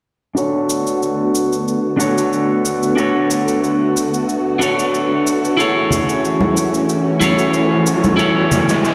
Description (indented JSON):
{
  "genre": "sunset chillout",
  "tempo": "92 BPM",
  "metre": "4/4",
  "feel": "swing 53% on 16ths",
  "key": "B dorian",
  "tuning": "A4 = 441 Hz",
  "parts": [
    { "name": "electric guitar at the edge of break-up", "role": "accompaniment", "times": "0.3-8.9 s", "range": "D4 to C#5", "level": "-19 LUFS", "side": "equal", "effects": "low-pass filter, tape echo" },
    { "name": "soft string machine", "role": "sustained chords", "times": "0.4-8.9 s", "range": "D3 to F#4", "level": "-22 LUFS", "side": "equal", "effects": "ensemble chorus" },
    { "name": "cabasa", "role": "drums", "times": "0.4-8.9 s", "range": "none", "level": "-29 LUFS", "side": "equal", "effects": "overdrive" },
    { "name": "riser", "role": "sound effects", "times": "6.3-8.9 s", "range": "none", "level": "-25 LUFS", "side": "equal", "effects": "none" },
    { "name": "congas", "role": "percussion", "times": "5.9-8.7 s", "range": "none", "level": "-22 LUFS", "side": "equal", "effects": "none" }
  ],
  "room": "wet lush hall reverb, RT60 2.0 s, digital ambience",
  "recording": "played on a big sound system in a bare room, large studio reverb",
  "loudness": "-16 LUFS",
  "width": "mono",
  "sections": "0.4-8.9 A section",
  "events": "filter sweep on clean electric guitar 0.4-8.9; riser 6.3-8.9",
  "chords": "0.4 Bm7; 5.6 F#m7"
}